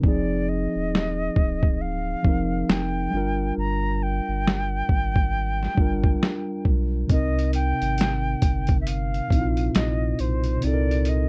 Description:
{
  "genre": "lo-fi hip hop",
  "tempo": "68 BPM",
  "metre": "4/4",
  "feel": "swing 61% on 16ths",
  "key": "F dorian",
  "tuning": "A4 = 440 Hz",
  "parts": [
    { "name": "mellow tine electric piano", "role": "accompaniment", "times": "0.0-11.3 s", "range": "Bb2 to Bb4", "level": "-30 LUFS", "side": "equal", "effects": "low-pass filter" },
    { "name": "warm sub bass", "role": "bass", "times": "0.0-11.3 s", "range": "D1 to C2", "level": "-29 LUFS", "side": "equal", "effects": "none" },
    { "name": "lo-fi sampler-style drum kit", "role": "drums", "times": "0.0-11.3 s", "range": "hi-hat, kick drum, snare drum", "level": "-24 LUFS", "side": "equal", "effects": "overdrive, vintage 12-bit sampler grit" },
    { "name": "concert flute", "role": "melody", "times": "0.1-11.3 s", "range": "C5 to Bb5", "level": "-32 LUFS", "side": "equal", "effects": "low-pass filter" }
  ],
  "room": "little or no reverb",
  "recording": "dark, warm production",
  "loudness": "-24 LUFS",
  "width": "mono",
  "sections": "0.0-11.3 A section",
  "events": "break 0.0-7.1",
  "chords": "0.0 Fm7; 3.1 Gm7; 7.1 Cm7"
}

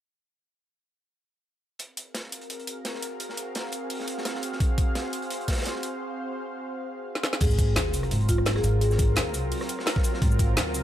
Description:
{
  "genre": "liquid drum and bass",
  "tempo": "171 BPM",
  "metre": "4/4",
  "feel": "swing 54% on 16ths",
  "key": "unclear",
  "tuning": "A4 = 440 Hz",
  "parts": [
    { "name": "lush unison pad", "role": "sustained chords", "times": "2.2-10.8 s", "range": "Gb3 to F5", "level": "-33 LUFS", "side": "right 1 dB", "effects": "chorus" },
    { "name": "crunchy breakbeat drum kit", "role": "drums", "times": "1.8-10.8 s", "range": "hi-hat, snare drum", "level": "-36 LUFS", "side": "equal", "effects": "high-pass filter on hats, high-pass filter on snare, high-pass filter on room" },
    { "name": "drum and bass drum kit", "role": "drums", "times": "1.8-10.8 s", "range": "cabasa, crash cymbal, hi-hat, rim click, snare drum", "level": "-30 LUFS", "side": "equal", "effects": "overdrive" },
    { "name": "electronic kick drum", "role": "drums", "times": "4.6-10.5 s", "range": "none", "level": "-24 LUFS", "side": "equal", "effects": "overdrive" },
    { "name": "marimba with medium mallets", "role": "melody", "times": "7.4-9.2 s", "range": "F4 to Ab4", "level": "-31 LUFS", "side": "left 2 dB", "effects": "tape echo" },
    { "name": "upright bass", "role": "bass", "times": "7.4-10.8 s", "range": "Ab1 to Eb2", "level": "-25 LUFS", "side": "equal", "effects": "none" },
    { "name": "sub drop", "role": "sound effects", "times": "7.4-8.8 s", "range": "none", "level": "-32 LUFS", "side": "equal", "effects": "none" }
  ],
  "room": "small room reverb",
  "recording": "none",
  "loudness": "-24 LUFS",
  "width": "side -12 dB against mid",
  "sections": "1.8-7.4 A section; 7.4-10.8 B section",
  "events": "break 6.0-7.4; drum fill 7.1; drop 7.4-10.8; impact 7.4-8.8",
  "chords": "1.8 Ab13"
}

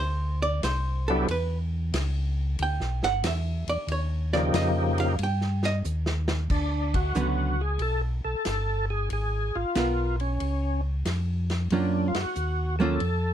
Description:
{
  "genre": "soul jazz organ trio",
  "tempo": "92 BPM",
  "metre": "4/4",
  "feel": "swing 68% on 8ths",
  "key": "unclear",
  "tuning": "A4 = 440 Hz",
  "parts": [
    { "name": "archtop guitar, miked and amplified", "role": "accompaniment", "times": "0.0-13.0 s", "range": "D3 to G5", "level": "-28 LUFS", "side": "right 3 dB", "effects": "none" },
    { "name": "mellow tonewheel organ", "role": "bass", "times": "0.0-13.3 s", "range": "G1 to G2", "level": "-27 LUFS", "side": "equal", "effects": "slow rotary speaker" },
    { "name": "warm soul drum kit", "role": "drums", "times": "0.6-13.2 s", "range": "crash cymbal, hi-hat, kick drum, ride cymbal, snare drum", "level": "-34 LUFS", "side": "equal", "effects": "none" },
    { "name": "percussive tonewheel organ", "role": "melody", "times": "1.1-13.3 s", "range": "Db3 to A4", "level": "-28 LUFS", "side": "left 1 dB", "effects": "slow rotary speaker, overdrive, chorus vibrato" }
  ],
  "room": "light reverb",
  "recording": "none",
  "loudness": "-24 LUFS",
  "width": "side -10 dB against mid",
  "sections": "0.0-6.5 A section; 6.5-13.3 B section",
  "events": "hollow-body jazz guitar solo 0.0-6.5; drum fill 5.8-6.5; band accent 6.8-7.2, 12.0-12.4",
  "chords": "0.0 Fadd9 (rootless); 1.3 Em7; 3.9 Eb9; 6.5 D6; 9.1 C#6; 11.7 F#maj7"
}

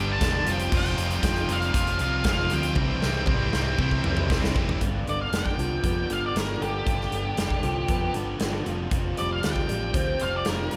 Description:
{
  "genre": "quiet-loud alternative rock",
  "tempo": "117 BPM",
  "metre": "4/4",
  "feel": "straight",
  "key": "G mixolydian",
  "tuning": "A4 = 443 Hz",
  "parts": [
    { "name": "octave-fuzz lead guitar", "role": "melody", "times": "0.0-10.7 s", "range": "G4 to A5", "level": "-32 LUFS", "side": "equal", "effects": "distortion, slapback echo" },
    { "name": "high-gain distorted guitar", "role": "riff", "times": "0.0-4.8 s", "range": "G2 to F4", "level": "-34 LUFS", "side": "equal", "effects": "distortion, slapback echo" },
    { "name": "overdriven electric guitar", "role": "riff", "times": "0.0-4.8 s", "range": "F2 to C4", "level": "-36 LUFS", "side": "equal", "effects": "slapback echo" },
    { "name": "thick fuzz guitar", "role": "riff", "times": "0.0-10.8 s", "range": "G2 to G4", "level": "-35 LUFS", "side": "equal", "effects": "distortion, slapback echo" },
    { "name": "hollow-body short-scale fingered electric bass", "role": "bass", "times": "0.0-10.8 s", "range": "E1 to F2", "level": "-32 LUFS", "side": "equal", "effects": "none" },
    { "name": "huge arena drum kit", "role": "drums", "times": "0.2-10.8 s", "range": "crash cymbal, hi-hat, kick drum, snare drum, toms", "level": "-30 LUFS", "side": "equal", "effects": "none" },
    { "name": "fingerpicked old ladder-braced acoustic guitar", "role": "arpeggios", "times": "4.8-10.8 s", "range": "G2 to C4", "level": "-34 LUFS", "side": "equal", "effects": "none" }
  ],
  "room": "moderate lush hall reverb, RT60 1.9 s",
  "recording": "big arena sound",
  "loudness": "-25 LUFS",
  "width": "mono",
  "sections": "0.0-4.8 A section; 4.8-10.8 B section",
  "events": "drum fill 2.8-4.8; lead electric guitar solo 4.8-10.8",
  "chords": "0.5 Fsus2; 2.8 C; 4.8 G7; 8.7 Fsus2"
}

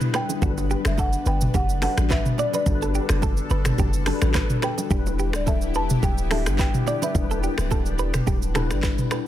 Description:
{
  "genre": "afrobeats",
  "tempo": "107 BPM",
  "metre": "4/4",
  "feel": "swing 55% on 16ths",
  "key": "E minor",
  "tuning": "A4 = 440 Hz",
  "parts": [
    { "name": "folk marimba with medium mallets", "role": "melody", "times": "0.0-9.1 s", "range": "D5 to A5", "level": "-30 LUFS", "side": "equal", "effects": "tape echo" },
    { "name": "tine electric piano", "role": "accompaniment", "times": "0.0-9.3 s", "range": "F#3 to B4", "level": "-29 LUFS", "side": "left 7 dB", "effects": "ensemble chorus" },
    { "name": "lush unison pad", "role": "sustained chords", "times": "0.0-9.3 s", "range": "D3 to B4", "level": "-34 LUFS", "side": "equal", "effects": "chorus, phaser" },
    { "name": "afro-pop drum kit", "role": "drums", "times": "0.0-9.3 s", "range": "finger snaps, handclaps, hi-hat, kick drum, rim click, shaker, toms", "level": "-24 LUFS", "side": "equal", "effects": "soft clipping on snare" },
    { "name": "direct-recorded clean electric guitar", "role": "riff", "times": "0.1-9.2 s", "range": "F#4 to D5", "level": "-32 LUFS", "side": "right 8 dB", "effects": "tape echo" },
    { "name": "bongos and congas", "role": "percussion", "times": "0.1-9.3 s", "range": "none", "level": "-34 LUFS", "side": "right 7 dB", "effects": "none" },
    { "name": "warm 808-style bass", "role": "bass", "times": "0.4-8.9 s", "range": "D1 to A1", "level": "-24 LUFS", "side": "equal", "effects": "none" }
  ],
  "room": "digital ambience",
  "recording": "dense, heavily limited modern master",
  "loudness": "-20 LUFS",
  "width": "side -12 dB against mid",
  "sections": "0.0-9.3 A section",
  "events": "break 0.0-0.4",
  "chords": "0.4 Gmaj7; 4.9 Em7"
}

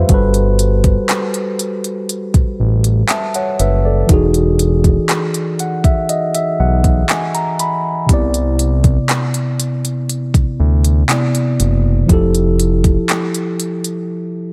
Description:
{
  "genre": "contemporary R&B",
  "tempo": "60 BPM",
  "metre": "4/4",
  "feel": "straight",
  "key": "unclear",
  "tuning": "A4 = 440 Hz",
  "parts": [
    { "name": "mellow tine electric piano", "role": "accompaniment", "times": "0.0-14.5 s", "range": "C3 to B5", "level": "-19 LUFS", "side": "equal", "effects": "phaser" },
    { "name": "smooth synth bass", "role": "bass", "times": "0.0-13.0 s", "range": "E1 to D2", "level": "-17 LUFS", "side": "equal", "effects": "none" },
    { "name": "smooth R&B drum kit", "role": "drums", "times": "0.1-14.1 s", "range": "handclaps, hi-hat, kick drum", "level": "-18 LUFS", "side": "equal", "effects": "none" }
  ],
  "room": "little or no reverb",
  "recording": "none",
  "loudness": "-15 LUFS",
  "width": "mono",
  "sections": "0.0-14.5 A section",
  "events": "tine electric piano fill 5.1-8.1; break 14.1-14.5",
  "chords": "0.1 Gmaj9; 4.1 Emaj9; 8.1 Cmaj9; 12.1 Fmaj9"
}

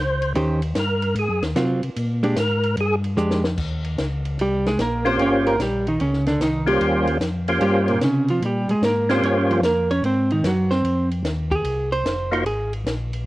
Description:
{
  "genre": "soul jazz organ trio",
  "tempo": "149 BPM",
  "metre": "4/4",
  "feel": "swing 67% on 8ths",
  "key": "Eb mixolydian",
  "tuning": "A4 = 442 Hz",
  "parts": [
    { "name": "percussive tonewheel organ", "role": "melody", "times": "0.0-9.6, 12.3-12.4 s", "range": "Bb3 to C5", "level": "-21 LUFS", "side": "equal", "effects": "slow rotary speaker, overdrive, chorus vibrato" },
    { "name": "mellow tonewheel organ", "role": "bass", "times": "0.0-13.2 s", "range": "F1 to C3", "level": "-24 LUFS", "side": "left 1 dB", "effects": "chorus vibrato, slow rotary speaker" },
    { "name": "compact cocktail drum kit", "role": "drums", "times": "0.2-13.2 s", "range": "crash cymbal, hi-hat, kick drum, ride cymbal, snare drum", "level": "-30 LUFS", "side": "left 1 dB", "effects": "cassette tape" },
    { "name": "hollow-body jazz guitar", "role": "accompaniment", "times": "0.4-12.7 s", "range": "Bb2 to Db5", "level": "-21 LUFS", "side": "right 1 dB", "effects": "cassette tape" }
  ],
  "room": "light reverb, small room ambience",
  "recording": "home recording on cassette",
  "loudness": "-19 LUFS",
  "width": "side -17 dB against mid",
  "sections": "0.0-3.6 A section; 3.6-13.3 A section",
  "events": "tonewheel organ solo 0.0-3.6; drum fill 3.2-3.6; hollow-body jazz guitar solo 3.6-13.3",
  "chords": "0.4 Eb6; 1.2 Ab6; 2.0 Bb6; 3.6 Eb13; 10.0 Ab13"
}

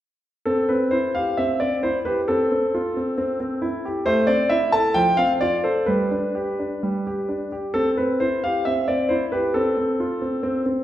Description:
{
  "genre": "classical-period piano sonatina",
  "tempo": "133 BPM",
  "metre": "4/4",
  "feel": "rubato",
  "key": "C major",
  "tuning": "A4 = 441 Hz",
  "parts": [
    { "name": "clear concert grand piano", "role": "solo", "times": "0.5-10.8 s", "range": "F3 to A5", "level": "-20 LUFS", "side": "equal", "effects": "none" }
  ],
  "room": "wet recital hall reverb, RT60 1.6 s",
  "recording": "heard from further back in the room, nothing above 10.6 kHz",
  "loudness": "-20 LUFS",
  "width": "side -12 dB against mid",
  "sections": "0.5-10.8 A section",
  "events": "none",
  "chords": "0.5 C; 2.3 F/C; 3.2 C; 4.1 Am; 5.0 F; 5.9 G; 7.8 C; 9.6 F/C"
}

